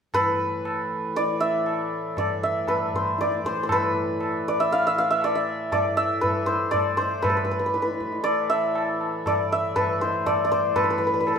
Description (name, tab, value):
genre	indian classical, Hindustani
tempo	119 BPM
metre	7/4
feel	straight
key	unclear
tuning	A4 = 440 Hz
part	santur	melody	0.1-11.4 s	B4 to F5	-23 LUFS	equal	none
part	pedal harmonium	drone	0.1-11.4 s	A2 to E3	-32 LUFS	left 2 dB	none
part	tabla	percussion	0.1-11.4 s	none	-30 LUFS	equal	none
room	wet stone room reverb, RT60 1.0 s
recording	band playing live in one room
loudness	-22 LUFS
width	side -6 dB against mid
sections	0.1-11.4 A section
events	none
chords	none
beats	| 0.14 0.65 1.16 1.67 2.18 2.69 3.19 | 3.70 4.21 4.71 5.22 5.73 6.23 6.74 | 7.24 7.75 8.25 8.76 9.26 9.76 10.26 | 10.77 11.27